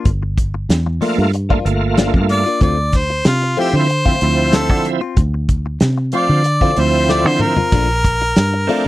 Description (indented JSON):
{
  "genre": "straight-eighth soul blues",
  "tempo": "94 BPM",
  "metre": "4/4",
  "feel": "straight",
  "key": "D minor",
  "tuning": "A4 = 441 Hz",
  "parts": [
    { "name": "direct-recorded clean electric guitar", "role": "stabs", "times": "0.0-8.9 s", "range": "F3 to F4", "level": "-22 LUFS", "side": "left 7 dB", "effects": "phaser" },
    { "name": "fingered electric bass", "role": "bass", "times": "0.1-8.7 s", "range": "G1 to D3", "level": "-18 LUFS", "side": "equal", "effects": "none" },
    { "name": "warm soul drum kit", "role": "drums", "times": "0.1-8.8 s", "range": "crash cymbal, hi-hat, kick drum, snare drum, toms", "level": "-16 LUFS", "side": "equal", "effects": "none" },
    { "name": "bright tonewheel organ", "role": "accompaniment", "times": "1.0-8.9 s", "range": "F3 to F4", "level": "-18 LUFS", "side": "right 3 dB", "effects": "slow rotary speaker, overdrive, chorus vibrato" },
    { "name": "clear harmonica", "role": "melody", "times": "2.3-8.9 s", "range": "F4 to D5", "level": "-18 LUFS", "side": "equal", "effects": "overdrive" }
  ],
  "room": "little or no reverb",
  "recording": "dry, close 1970s-style studio recording",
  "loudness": "-13 LUFS",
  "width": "side -16 dB against mid",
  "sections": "0.0-8.9 A section",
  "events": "drum fill 7.1-7.7",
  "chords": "0.0 Gm7; 2.6 Dm7; 7.7 Bbmaj7",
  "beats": "| 0.06 0.70 1.34 1.98 | 2.62 3.26 3.90 4.54 | 5.18 5.82 6.45 7.09 | 7.73 8.37"
}